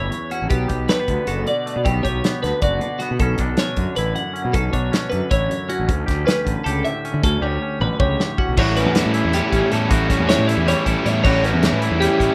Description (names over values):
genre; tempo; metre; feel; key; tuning
math rock and midwest emo; 313 BPM (eighths); 7/8; straight; unclear; A4 = 440 Hz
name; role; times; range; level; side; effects
twangy electric guitar; accompaniment; 0.0-12.3 s; D2 to G4; -28 LUFS; equal; none
twelve-string electric guitar; arpeggios; 0.0-12.3 s; F#4 to F#5; -26 LUFS; equal; subtle chorus
fuzz fingered electric bass; bass; 0.0-12.3 s; F#1 to D3; -25 LUFS; equal; overdrive
loose indie drum kit; drums; 0.1-12.3 s; crash cymbal, hi-hat, kick drum, snare drum, toms; -25 LUFS; equal; none
overdriven electric guitar; riff; 8.6-12.3 s; A2 to E4; -23 LUFS; equal; none
room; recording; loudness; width
little or no reverb; rough home demo mix; -19 LUFS; mono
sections
0.0-8.6 A section; 8.6-12.3 B section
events
drum fill 7.4-8.6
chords
0.0 A7; 0.5 Gmaj9; 3.2 Bm9; 5.9 A13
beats
0.13 0.32 | 0.52 0.71 0.90 1.09 1.28 1.48 1.67 | 1.86 2.05 2.24 2.44 2.63 2.82 3.01 | 3.20 3.39 3.59 3.78 3.97 4.16 4.35 | 4.54 4.74 4.93 5.12 5.31 5.50 5.69 | 5.88 6.08 6.27 6.46 6.65 6.84 7.03 | 7.22 7.42 7.61 7.80 7.99 8.18 8.37 | 8.56 8.76 8.95 9.14 9.33 9.52 9.71 | 9.90 10.09 10.28 10.47 10.67 10.86 11.05 | 11.24 11.43 11.62 11.81 12.00 12.20